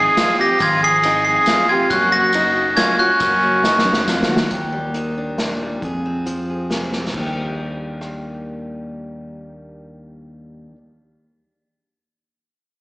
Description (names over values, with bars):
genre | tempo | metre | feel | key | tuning
indie folk with a building arrangement | 137 BPM | 3/4 | straight | Eb major | A4 = 440 Hz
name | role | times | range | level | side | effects
glockenspiel with soft plastic mallets | melody | 0.0-4.0 s | Gb6 to C7 | -18 LUFS | equal | slapback echo
warm trumpet | second line | 0.0-4.0 s | Db4 to Ab4 | -18 LUFS | equal | slapback echo
picked steel-string acoustic guitar | accompaniment | 0.0-4.5 s | Gb2 to Gb4 | -25 LUFS | left 1 dB | slapback echo
bright upright piano | arpeggios | 0.0-4.5 s | Eb4 to G4 | -24 LUFS | right 1 dB | slapback echo
fingered electric bass | bass | 0.0-10.7 s | Gb1 to Gb2 | -28 LUFS | equal | none
unplugged drum kit | drums | 0.2-8.1 s | crash cymbal, hi-hat, kick drum, ride cymbal, rim click, snare drum | -24 LUFS | equal | none
tambourine | percussion | 0.2-4.5 s | none | -32 LUFS | left 1 dB | none
fingerpicked steel-string acoustic guitar | accompaniment | 4.5-10.8 s | Eb2 to Ab4 | -29 LUFS | left 1 dB | slapback echo
room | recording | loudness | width
light reverb, studio ambience | live gig heard through the venue's PA, recital hall reverb, small speaker sound | -15 LUFS | side -21 dB against mid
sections
0.0-4.5 A section; 4.5-7.1 B section; 7.1-9.8 C section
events
drum fill 3.6-4.5, 6.9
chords
0.0 Ab6; 1.9 Gb; 4.5 Ebmaj7; 5.8 Fm; 7.1 Ebmaj7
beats
0.17 | 0.60 1.03 1.47 | 1.90 2.33 2.77 | 3.20 3.64 4.07 | 4.51 4.95 5.38 | 5.82 6.26 6.70 | 7.14 7.58 8.02 | 8.45 8.89 9.33